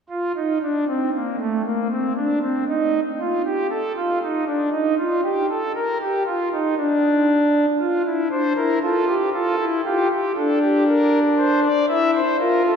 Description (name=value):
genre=classical, baroque-style 3-part fugue for pipe organ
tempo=58 BPM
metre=4/4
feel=straight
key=unclear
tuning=A4 = 440 Hz
part: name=pipe organ, foundations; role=solo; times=0.1-12.8 s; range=A3 to E5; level=-18 LUFS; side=equal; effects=none
room=wet cathedral reverb, RT60 4.1 s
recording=recorded in a church or concert hall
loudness=-18 LUFS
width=side -7 dB against mid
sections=0.0-12.8 A section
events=none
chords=0.0 N.C.; 7.8 F; 9.9 Gm7; 11.9 C7/E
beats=0.62 1.65 2.68 | 3.71 4.74 5.76 6.79 | 7.81 8.83 9.85 10.88 | 11.89